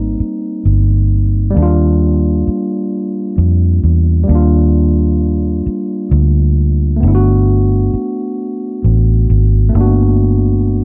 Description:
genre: slow six-eight R&B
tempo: 44 BPM (dotted quarters)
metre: 6/8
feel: straight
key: unclear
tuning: A4 = 440 Hz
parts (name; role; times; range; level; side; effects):
- overdriven tine electric piano; accompaniment; 0.0-10.8 s; G3 to F#4; -19 LUFS; equal; none
- vintage muted fingered electric bass; bass; 0.0-10.8 s; G1 to F2; -13 LUFS; equal; none
room: light reverb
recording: dark, warm production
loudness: -13 LUFS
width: mono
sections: 0.0-10.8 A section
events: none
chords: 0.0 Abmaj9 (rootless); 1.6 Ebmaj9; 7.0 Gmaj9

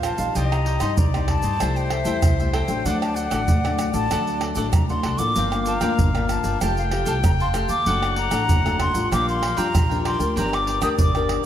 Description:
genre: samba and choro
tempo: 96 BPM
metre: 4/4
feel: straight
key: G minor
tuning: A4 = 440 Hz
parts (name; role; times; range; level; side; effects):
- breathy concert flute; melody; 0.0-11.3 s; E5 to Eb6; -26 LUFS; left 1 dB; analog delay
- warm clarinet; second line; 0.0-11.5 s; C5 to G5; -29 LUFS; left 7 dB; analog delay
- cavaquinho; accompaniment; 0.0-11.4 s; D4 to A5; -31 LUFS; right 4 dB; none
- nylon-string guitar; accompaniment; 0.0-11.5 s; G2 to Bb4; -28 LUFS; left 5 dB; none
- upright bass; bass; 0.0-11.4 s; F1 to G2; -26 LUFS; equal; none
- egg shaker, pandeiro, tamborim and surdo; percussion; 0.0-11.5 s; none; -23 LUFS; right 2 dB; none
room: moderate lush hall reverb, RT60 2.0 s, small room ambience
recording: dreamy mix soaked in reverb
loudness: -19 LUFS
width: side -10 dB against mid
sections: 0.0-11.5 A section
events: none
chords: 0.4 Cm; 1.6 Am7/C; 2.9 D; 5.4 Gm7; 6.6 Fadd9; 7.9 D/F#; 9.1 Bb6; 10.4 Gm

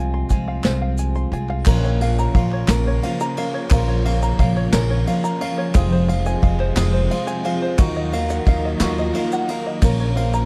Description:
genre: indie folk with a building arrangement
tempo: 59 BPM (dotted quarters)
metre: 6/8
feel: straight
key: Bb minor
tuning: A4 = 440 Hz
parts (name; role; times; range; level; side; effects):
- picked twelve-string acoustic guitar; accompaniment; 0.0-10.5 s; F2 to F4; -28 LUFS; equal; none
- open-back banjo; arpeggios; 0.0-10.5 s; Gb4 to C6; -28 LUFS; equal; none
- upright bass; bass; 0.0-10.4 s; F1 to Eb2; -23 LUFS; equal; none
- soft brush drum kit; drums; 0.3-10.3 s; crash cymbal, hi-hat, kick drum, ride cymbal, snare drum; -24 LUFS; equal; none
- group handclap; percussion; 0.3-10.0 s; none; -34 LUFS; equal; none
- tube shaker; percussion; 0.3-10.5 s; none; -43 LUFS; equal; none
- dark upright piano; accompaniment; 1.7-10.5 s; F1 to Eb5; -31 LUFS; equal; none
- warm studio string section; sustained chords; 2.5-10.5 s; C3 to Bb3; -31 LUFS; equal; none
room: little or no reverb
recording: dark, warm production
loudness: -20 LUFS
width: mono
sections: 0.0-1.7 A section; 1.7-10.5 B section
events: none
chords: 0.0 Fm/C; 1.7 Bbm; 5.8 Fm; 7.8 Ebmadd9; 9.8 Bbm

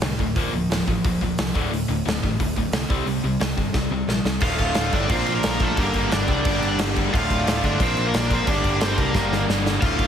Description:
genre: punk rock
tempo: 178 BPM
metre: 4/4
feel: straight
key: unclear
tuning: A4 = 440 Hz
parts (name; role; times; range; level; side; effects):
- distorted electric guitar; riff; 0.0-10.1 s; D2 to Bb4; -28 LUFS; right 12 dB; distortion
- tight distorted guitar; riff; 0.0-10.1 s; D2 to C4; -27 LUFS; left 12 dB; distortion
- picked electric bass; bass; 0.0-10.1 s; D1 to C2; -27 LUFS; equal; none
- big rock drum kit; drums; 0.0-10.1 s; crash cymbal, hi-hat, kick drum, snare drum; -24 LUFS; equal; none
- cranked stack guitar; melody; 4.4-10.1 s; A3 to F5; -26 LUFS; equal; overdrive, digital delay
- distorted electric guitar; riff; 4.4-10.1 s; D2 to Bb4; -28 LUFS; right 1 dB; overdrive
room: light reverb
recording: heavily compressed radio sound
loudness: -19 LUFS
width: side -8 dB against mid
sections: 0.0-4.4 A section; 4.4-10.1 B section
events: drum fill 3.7-4.4, 9.1-9.8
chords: 0.4 Bb/D; 1.6 D5; 2.9 C5; 4.4 Dm; 5.1 Bb; 5.8 Gm; 7.1 Dm; 7.8 Bb; 8.5 Gm

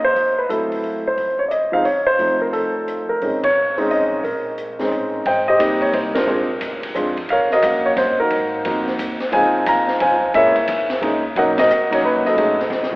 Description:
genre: jazz piano trio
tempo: 177 BPM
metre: 3/4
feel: swing 64% on 8ths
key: Bb minor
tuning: A4 = 441 Hz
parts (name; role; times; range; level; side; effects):
- warm grand piano; melody; 0.0-13.0 s; F3 to Bb5; -16 LUFS; equal; none
- upright bass; bass; 0.0-13.0 s; Ab1 to Ab2; -37 LUFS; equal; none
- open jazz drum kit; drums; 0.2-12.9 s; hi-hat, kick drum, ride cymbal, snare drum; -28 LUFS; equal; none
room: wet church reverb, RT60 3.9 s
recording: recorded in a church or concert hall, telephone sound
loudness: -16 LUFS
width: side -23 dB against mid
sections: 0.0-5.3 A section; 5.3-13.0 B section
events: band accent 3.4, 6.1, 11.5; drum fill 12.7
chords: 0.2 D9; 1.2 Dbmaj9; 2.2 F7; 3.2 Bbm11; 5.3 Abmaj7; 6.3 Bb7; 7.3 Ebm7; 8.3 Ab7; 9.3 Dbmaj7; 10.3 Gb7 (rootless); 11.4 Bmaj7; 12.4 B13

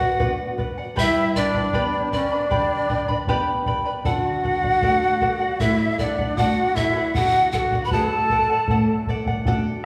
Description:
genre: andean folk, Andean ensemble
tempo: 78 BPM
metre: 4/4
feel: straight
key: unclear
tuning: A4 = 439 Hz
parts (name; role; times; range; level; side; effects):
- pan flute; melody; 0.0-9.1 s; D5 to B5; -25 LUFS; equal; none
- breathy large quena; second line; 0.0-9.1 s; D4 to B4; -29 LUFS; equal; none
- charango; accompaniment; 0.0-9.8 s; G4 to B5; -30 LUFS; equal; none
- nylon-string guitar; accompaniment; 0.0-9.8 s; F#2 to G4; -30 LUFS; equal; none
- bombo; percussion; 0.0-9.6 s; none; -29 LUFS; equal; none
room: wet recital hall reverb, RT60 1.4 s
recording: recorded in a church or concert hall, studio ambience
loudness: -21 LUFS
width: mono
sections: 0.0-9.8 A section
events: none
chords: 0.0 Bm; 1.0 G; 4.1 D

